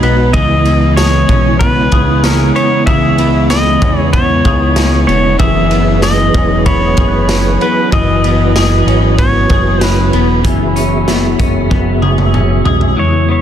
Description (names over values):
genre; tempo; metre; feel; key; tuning
dream pop; 95 BPM; 4/4; straight; unclear; A4 = 438 Hz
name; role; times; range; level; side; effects
clean lap steel guitar; melody; 0.0-13.4 s; B4 to E5; -16 LUFS; equal; tape echo
mellow tonewheel organ; sustained chords; 0.0-13.4 s; C#3 to E5; -17 LUFS; right 3 dB; chorus vibrato, fast rotary speaker
clean electric guitar; arpeggios; 0.0-13.4 s; E3 to G#4; -15 LUFS; left 3 dB; analog chorus, tape echo
fat analog bass; bass; 0.0-13.0 s; E1 to E2; -14 LUFS; equal; none
raw garage drum kit; drums; 0.0-13.0 s; hi-hat, kick drum, ride cymbal, snare drum, tambourine, toms; -15 LUFS; equal; none
glockenspiel with rubber mallets; texture; 1.9-13.4 s; G#5 to F#6; -26 LUFS; right 4 dB; tape echo
room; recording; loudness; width
light reverb, studio ambience; dense, heavily limited modern master; -9 LUFS; side -10 dB against mid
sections
0.0-10.4 A section; 10.4-13.0 B section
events
drum fill 11.7-13.0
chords
0.3 C#m7; 5.4 F#9sus4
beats
| 0.34 0.97 1.61 2.24 | 2.87 3.50 4.13 4.76 | 5.39 6.03 6.66 7.29 | 7.92 8.55 9.19 9.82 | 10.45 11.08 11.71 12.34 | 12.97